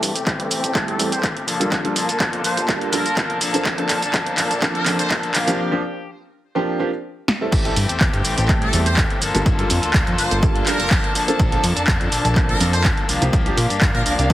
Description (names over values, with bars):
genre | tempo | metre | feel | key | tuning
filtered disco house | 124 BPM | 4/4 | swing 53% on 16ths | unclear | A4 = 440 Hz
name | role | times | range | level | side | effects
dark studio violin section | sustained chords | 0.0-14.3 s | Bb3 to A5 | -26 LUFS | equal | sidechain pumping, low-pass filter
electric guitar at the edge of break-up | riff | 0.0-14.3 s | E3 to A4 | -26 LUFS | left 4 dB | sidechain pumping, low-pass filter
fat analog bass | bass | 0.0-14.3 s | F1 to Bb2 | -24 LUFS | equal | sidechain pumping, high-pass filter, low-pass filter
punchy analog drum machine | drums | 0.0-14.3 s | crash cymbal, handclaps, hi-hat, shaker, snare drum | -22 LUFS | right 1 dB | sidechain pumping on perc, sidechain pumping on hats, sidechain pumping on cymbals
electronic kick drum | drums | 0.3-14.3 s | none | -20 LUFS | equal | high-pass filter on kick, high-pass filter on room
clear grand piano | accompaniment | 0.7-14.3 s | F3 to A4 | -23 LUFS | right 1 dB | phaser, vintage 12-bit sampler grit, sidechain pumping, low-pass filter
muted trumpet section | melody | 0.9-5.2, 8.6-14.1 s | A4 to C5 | -27 LUFS | equal | sidechain pumping, low-pass filter, digital delay
room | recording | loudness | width
light reverb | heavily compressed radio sound, multiband compression | -17 LUFS | side -14 dB against mid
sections
0.0-7.5 A section; 7.5-14.3 B section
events
build-up 0.0-7.5; drum fill 0.0-5.6, 7.3; break 5.6-7.5; drop 7.5-14.3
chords
0.0 Am7; 1.5 Gm9; 3.4 Bbmaj7; 5.3 C9sus4; 7.5 Am7; 9.2 Gm9; 11.2 Bbmaj7; 13.1 C9sus4